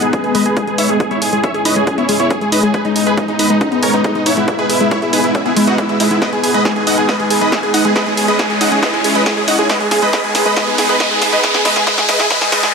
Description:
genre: uplifting trance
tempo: 138 BPM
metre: 4/4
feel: straight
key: G# minor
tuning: A4 = 443 Hz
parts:
  - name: big supersaw lead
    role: melody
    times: 0.0-12.7 s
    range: G#3 to F#5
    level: -16 LUFS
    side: right 1 dB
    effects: sidechain pumping, low-pass filter, ping-pong delay
  - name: lush unison pad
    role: sustained chords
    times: 0.0-12.7 s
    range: G#3 to C#5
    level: -19 LUFS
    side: equal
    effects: chorus, phaser, sidechain pumping
  - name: analog pluck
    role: arpeggios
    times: 0.0-12.7 s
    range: G#3 to G#4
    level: -19 LUFS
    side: left 1 dB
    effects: chorus, sidechain pumping, ping-pong delay
  - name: punchy analog drum machine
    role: drums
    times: 0.0-12.7 s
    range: hi-hat, snare drum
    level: -19 LUFS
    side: right 1 dB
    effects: sidechain pumping on hats, high-pass filter on hats, high-pass filter on snare
  - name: riser and reverse cymbal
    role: sound effects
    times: 0.3-12.7 s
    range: none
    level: -22 LUFS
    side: equal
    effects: none
  - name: electronic kick drum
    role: drums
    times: 0.1-12.4 s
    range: none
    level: -21 LUFS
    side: equal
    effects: overdrive, high-pass filter on kick
room: moderate huge ambient reverb, RT60 6.9 s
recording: high-pass filter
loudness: -12 LUFS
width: side -5 dB against mid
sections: 0.0-12.7 A section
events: build-up 0.0-12.7; filter sweep on synth pluck 0.0-12.7; filter sweep 0.0-12.7; riser 0.3-12.7; drum fill 6.2-12.7; reverse cymbal 12.3-12.7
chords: 0.0 G#m; 1.0 C#m; 2.7 G#m; 4.5 E; 6.2 G#m; 8.0 C#m; 9.7 G#m; 11.4 E

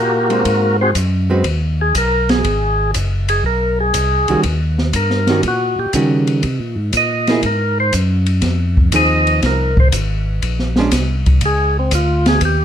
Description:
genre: soul jazz organ trio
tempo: 120 BPM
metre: 4/4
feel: swing 69% on 8ths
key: unclear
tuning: A4 = 440 Hz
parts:
  - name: percussive tonewheel organ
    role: melody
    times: 0.0-12.6 s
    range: Bb3 to D#5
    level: -16 LUFS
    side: equal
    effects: slow rotary speaker
  - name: tonewheel organ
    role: bass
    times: 0.0-12.6 s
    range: Gb1 to Db3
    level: -17 LUFS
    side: equal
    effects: overdrive, chorus vibrato, slow rotary speaker
  - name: archtop guitar, miked and amplified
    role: accompaniment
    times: 0.3-10.9 s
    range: Eb3 to B4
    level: -19 LUFS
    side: right 2 dB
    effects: none
  - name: open jazz drum kit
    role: drums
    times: 0.3-12.6 s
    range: hi-hat, kick drum, ride cymbal, snare drum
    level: -20 LUFS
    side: equal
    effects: none
room: light reverb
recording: none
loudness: -13 LUFS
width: side -9 dB against mid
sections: 0.0-12.6 A section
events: tonewheel organ solo 0.0-12.6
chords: 0.5 Ab7#9; 4.4 Eb7#9; 6.4 Cm7b13; 8.4 Fm7; 10.4 Bb7#9

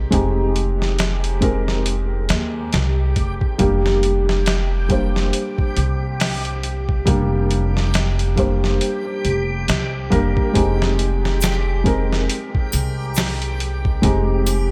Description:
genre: trip hop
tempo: 69 BPM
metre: 4/4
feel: swing 58% on 16ths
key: F dorian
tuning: A4 = 442 Hz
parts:
  - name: felt-muted upright piano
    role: accompaniment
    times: 0.0-14.7 s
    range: G3 to C5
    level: -24 LUFS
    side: equal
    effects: tremolo, vintage 12-bit sampler grit, low-pass filter, tape echo
  - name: upright bass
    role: bass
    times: 0.0-14.7 s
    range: F1 to Eb2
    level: -23 LUFS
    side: equal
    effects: none
  - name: backwards swelling texture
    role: texture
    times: 0.0-14.7 s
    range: G4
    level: -33 LUFS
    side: equal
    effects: built-in reverb, subtle chorus
  - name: boom bap sampler-style drum kit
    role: drums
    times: 0.1-14.7 s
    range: hi-hat, kick drum, snare drum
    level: -24 LUFS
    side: equal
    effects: none
  - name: egg shaker and triangle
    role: percussion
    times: 11.4-14.7 s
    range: none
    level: -33 LUFS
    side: equal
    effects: none
room: light reverb, small room ambience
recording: none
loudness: -19 LUFS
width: mono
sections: 0.0-14.7 A section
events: none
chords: 0.0 Fm7; 3.6 Gm/F; 10.6 Fm7

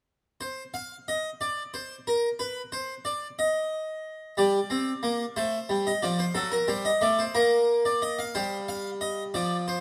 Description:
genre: classical, baroque-style two-part invention for harpsichord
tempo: 60 BPM (dotted quarters)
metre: 6/8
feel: straight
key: C minor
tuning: A4 = 444 Hz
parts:
  - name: harpsichord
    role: solo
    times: 0.4-9.8 s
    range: F3 to F5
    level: -28 LUFS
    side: equal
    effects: none
room: moderate recital hall reverb, RT60 1.7 s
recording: close, detailed microphones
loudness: -28 LUFS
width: mono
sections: 0.4-9.8 A section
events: none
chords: 0.4 N.C.; 4.4 Gm; 5.4 Am7b5; 6.4 D7/F#; 7.3 Bbadd11; 8.3 Cm/G

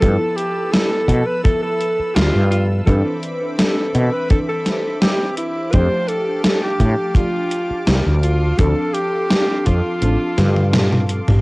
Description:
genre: vaporwave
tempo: 84 BPM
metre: 4/4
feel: straight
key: D dorian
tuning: A4 = 441 Hz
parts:
  - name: breathy alto saxophone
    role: melody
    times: 0.0-11.1 s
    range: E4 to C5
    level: -21 LUFS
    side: equal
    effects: cassette tape, tape echo
  - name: mellow FM electric piano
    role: accompaniment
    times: 0.0-11.4 s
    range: E3 to E5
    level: -25 LUFS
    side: equal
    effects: analog chorus, tape echo, plate reverb
  - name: lush unison pad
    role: sustained chords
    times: 0.0-11.4 s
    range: C4 to E6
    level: -32 LUFS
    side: equal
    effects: chorus, vintage 12-bit sampler grit, plate reverb
  - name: woody fretless electric bass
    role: bass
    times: 0.0-11.4 s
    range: A1 to B2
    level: -16 LUFS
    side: equal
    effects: none
  - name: gated 80s digital drum machine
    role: drums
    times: 0.0-11.4 s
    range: hi-hat, snare drum, toms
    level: -18 LUFS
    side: equal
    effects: gated reverb, gated reverb snare, overdrive, cassette tape
  - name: kick drum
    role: drums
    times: 0.0-9.8 s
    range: none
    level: -15 LUFS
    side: equal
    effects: cassette tape
room: light reverb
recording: home recording on cassette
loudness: -15 LUFS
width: side -24 dB against mid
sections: 0.0-11.4 A section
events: kick drops out 10.0-11.4; drum fill 10.4-11.4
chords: 0.0 G13; 2.9 Cmaj9/G; 5.7 F69; 8.2 Dm7

